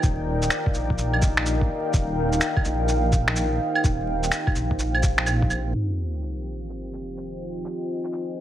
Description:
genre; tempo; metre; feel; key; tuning
future garage; 126 BPM; 4/4; swing 65% on 16ths; F dorian; A4 = 440 Hz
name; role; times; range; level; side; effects
deep dark ambient pad; sustained chords; 0.0-8.4 s; Eb4 to Ab5; -27 LUFS; equal; chorus, built-in reverb, sidechain pumping
dark detuned saw bass; bass; 0.0-5.7 s; Eb1 to Bb1; -25 LUFS; equal; sidechain pumping
electronic kick drum; drums; 0.0-5.5 s; none; -23 LUFS; equal; none
electronic shaker, finger snaps and claves; drums; 0.0-8.2 s; none; -25 LUFS; right 1 dB; none
sub drop; sound effects; 5.7-7.6 s; none; -30 LUFS; equal; none
room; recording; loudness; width
moderate recital hall reverb, RT60 1.4 s; vinyl crackle, low-pass filter; -21 LUFS; side -12 dB against mid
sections
0.0-5.7 A section; 5.7-8.4 B section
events
impact 5.7-7.6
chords
0.0 Ebmaj7; 5.7 Fm7

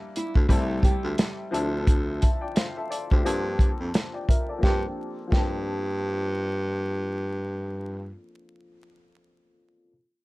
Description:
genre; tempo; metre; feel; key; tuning
hip hop, boom-bap hip-hop; 87 BPM; 4/4; swing 57% on 16ths; G dorian; A4 = 438 Hz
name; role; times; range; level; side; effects
clear upright piano; accompaniment; 0.0-9.9 s; F3 to A5; -33 LUFS; left 3 dB; high-pass filter, low-pass filter
nylon-string guitar; melody; 0.2-6.7 s; E4 to G4; -35 LUFS; right 2 dB; high-pass filter, low-pass filter, tape echo
warm soul drum kit; drums; 0.2-5.5 s; hi-hat, kick drum, snare drum; -22 LUFS; equal; none
breathy baritone saxophone; bass; 0.4-8.2 s; C2 to G2; -28 LUFS; equal; none
room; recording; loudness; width
little or no reverb; vinyl crackle; -23 LUFS; side -21 dB against mid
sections
0.0-4.6 A section; 4.6-7.4 B section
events
filter sweep 0.0-4.6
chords
0.5 Am7/C; 1.5 Dm7; 3.2 Gm11

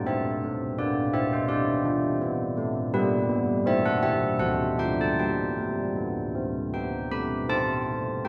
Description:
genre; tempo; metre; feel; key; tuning
classical, tune for church bells; 78-84 BPM; 3/4; straight; G major; A4 = 438 Hz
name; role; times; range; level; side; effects
carillon bells; solo; 0.0-8.3 s; D3 to B5; -27 LUFS; equal; none
room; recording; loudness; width
wet recital hall reverb, RT60 1.6 s; heard from further back in the room; -26 LUFS; mono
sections
0.0-7.5 A section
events
none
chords
0.0 G; 0.8 G/B; 3.0 G; 3.7 Am/C; 4.4 D7; 5.2 G; 7.5 Am/C

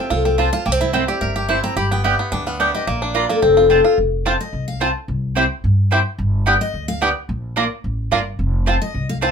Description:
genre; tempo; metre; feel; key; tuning
bluegrass; 217 BPM; 4/4; swing 54% on 8ths; F major; A4 = 439 Hz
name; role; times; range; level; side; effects
picked steel-string acoustic guitar; accompaniment; 0.0-9.2 s; G4 to B5; -19 LUFS; left 4 dB; none
bluegrass banjo; arpeggios; 0.0-9.3 s; Bb3 to Bb4; -21 LUFS; right 3 dB; none
upright bass; bass; 0.1-9.3 s; F1 to G2; -21 LUFS; equal; none
mandolin; stabs; 0.4-9.3 s; Bb3 to Bb5; -19 LUFS; right 2 dB; none
room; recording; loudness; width
moderate small room reverb, RT60 0.5 s; minimal, uncompressed stereo recording; -16 LUFS; side -6 dB against mid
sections
0.0-4.0 A section; 4.0-9.3 A section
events
steel-string acoustic guitar solo 0.0-9.3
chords
0.0 F; 0.7 C; 1.8 G; 2.9 Bb; 3.4 F; 5.1 C; 6.2 G; 7.3 Bb; 8.4 F

